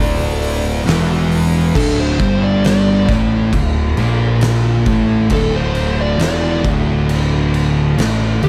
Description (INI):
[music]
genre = stoner and doom metal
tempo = 67 BPM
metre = 4/4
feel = straight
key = unclear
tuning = A4 = 440 Hz
[part]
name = fuzz lead guitar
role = melody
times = 0.0-8.5 s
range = A4 to D5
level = -25 LUFS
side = equal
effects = distortion, analog delay
[part]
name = sludgy distorted guitar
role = riff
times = 0.0-1.7 s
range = D2 to E3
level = -28 LUFS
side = equal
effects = overdrive
[part]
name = thick fuzz guitar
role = riff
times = 0.0-8.5 s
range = D2 to Bb3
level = -21 LUFS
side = equal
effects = distortion
[part]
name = thick fuzz guitar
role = riff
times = 0.0-8.5 s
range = D2 to Bb3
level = -22 LUFS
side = equal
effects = distortion
[part]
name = fuzz picked electric bass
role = bass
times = 0.0-8.5 s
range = D1 to Bb1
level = -21 LUFS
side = equal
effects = overdrive
[part]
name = oversized low-tuned drum kit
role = drums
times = 0.4-8.5 s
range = crash cymbal, hi-hat, kick drum, snare drum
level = -22 LUFS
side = equal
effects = none
[sound]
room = light reverb, small room ambience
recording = none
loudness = -15 LUFS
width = mono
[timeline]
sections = 0.0-1.7 A section; 1.7-8.5 B section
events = lead electric guitar solo 1.7-8.5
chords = 0.0 N.C.; 1.7 D5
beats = 0.86 | 1.75 2.63 3.52 4.42 | 5.31 6.20 7.09 7.98